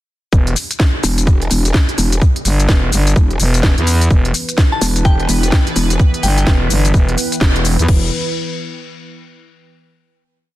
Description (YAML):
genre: bass house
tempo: 127 BPM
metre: 4/4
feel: swing 61% on 16ths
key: E minor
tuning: A4 = 441 Hz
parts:
  - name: growling FM bass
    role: bass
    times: 0.3-8.1 s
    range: E1 to E2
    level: -14 LUFS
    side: equal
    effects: tube saturation, sidechain pumping
  - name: electronic kick drum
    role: drums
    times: 0.3-8.0 s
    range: none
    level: -14 LUFS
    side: equal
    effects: none
  - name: garage drum kit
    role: drums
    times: 0.3-8.0 s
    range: crash cymbal, hi-hat, shaker, snare drum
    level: -20 LUFS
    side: equal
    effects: none
  - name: growl bass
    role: bass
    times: 1.0-6.0 s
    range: E1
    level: -15 LUFS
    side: equal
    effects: chorus, sidechain pumping
  - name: sweeping resonant pad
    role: sustained chords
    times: 4.1-8.1 s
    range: E3 to B4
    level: -24 LUFS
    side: equal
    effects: chorus, sidechain pumping
  - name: glassy synth bell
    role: melody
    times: 4.7-6.4 s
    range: G5 to A5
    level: -25 LUFS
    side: left 2 dB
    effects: chorus, tremolo, tape echo
room: digital ambience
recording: dense, heavily limited modern master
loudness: -12 LUFS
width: side -16 dB against mid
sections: 0.3-7.9 drop; 7.9-9.8 final chord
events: drop 0.3-7.9; band accent 7.4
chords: 0.3 E5